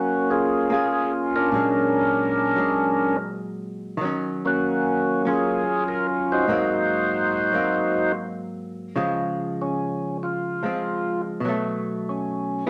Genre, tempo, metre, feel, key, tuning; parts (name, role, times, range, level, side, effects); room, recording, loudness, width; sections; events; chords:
jazz; 97 BPM; 4/4; swing 69% on 8ths; Db major; A4 = 440 Hz
percussive tonewheel organ; melody; 0.0-12.6 s; Bb3 to C5; -24 LUFS; equal; slow rotary speaker
archtop guitar, miked and amplified; accompaniment; 0.0-12.7 s; Ab2 to Ab4; -30 LUFS; equal
wet studio reverb, RT60 0.8 s; -23 LUFS; mono
0.0-9.0 A section; 9.0-12.7 B section
tonewheel organ solo 9.0-12.7
0.0 Gbmaj9; 1.5 Bb7alt; 4.0 Ebm9; 6.5 Ab9; 9.0 Dbmaj7; 11.4 Cb5